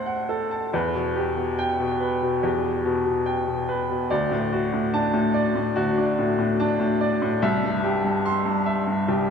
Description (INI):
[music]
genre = neoclassical minimalist piano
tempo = 72 BPM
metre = 4/4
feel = rubato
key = E minor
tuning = A4 = 442 Hz
[part]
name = bright upright piano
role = solo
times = 0.0-9.3 s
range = C2 to C6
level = -21 LUFS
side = left 1 dB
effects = none
[sound]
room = wet church reverb, RT60 2.7 s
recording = recorded in a church or concert hall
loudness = -21 LUFS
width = side -6 dB against mid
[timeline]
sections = 0.7-9.3 A section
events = none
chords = 0.0 D7; 0.7 Em; 4.1 D; 7.4 C